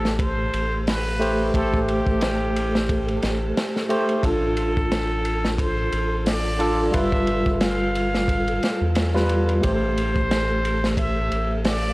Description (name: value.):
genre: trip hop.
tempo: 89 BPM.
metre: 4/4.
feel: swing 56% on 16ths.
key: A minor.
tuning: A4 = 442 Hz.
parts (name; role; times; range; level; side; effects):
trumpet with plunger mute; melody; 0.0-11.9 s; G4 to F5; -28 LUFS; equal; vintage 12-bit sampler grit, tape echo.
barky tine electric piano; accompaniment; 0.0-11.9 s; G3 to C5; -24 LUFS; equal; harmonic tremolo.
round analog bass; bass; 0.0-11.9 s; G1 to E2; -26 LUFS; equal; none.
flickering grainy texture; texture; 0.1-11.9 s; A4; -34 LUFS; right 1 dB; none.
crunchy breakbeat drum kit; drums; 0.1-11.8 s; hi-hat, kick drum, ride cymbal, snare drum; -26 LUFS; equal; none.
room: studio ambience.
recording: dry, gritty hardware recording, transformer saturation, vinyl crackle.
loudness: -20 LUFS.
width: side -20 dB against mid.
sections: 0.0-11.9 A section.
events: none.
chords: 0.0 Am7; 4.2 F6/A; 6.9 G7; 9.6 Am7.